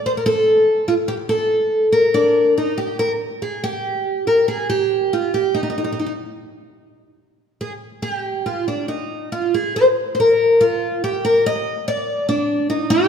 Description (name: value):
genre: fado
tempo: 71 BPM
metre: 2/4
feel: rubato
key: unclear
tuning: A4 = 436 Hz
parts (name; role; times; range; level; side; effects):
- picked twelve-string acoustic guitar; solo; 0.1-13.1 s; D4 to Eb5; -16 LUFS; equal; slapback echo
room: moderate concert hall reverb, RT60 2.0 s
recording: none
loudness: -16 LUFS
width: side -7 dB against mid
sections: 0.0-3.0 A section; 3.0-13.1 B section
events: none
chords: none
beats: 0.43 | 1.26 2.12 | 2.98 3.83 | 4.68 5.53 | 6.35 7.17 | 8.00 8.86 | 9.74 10.60 | 11.44 12.28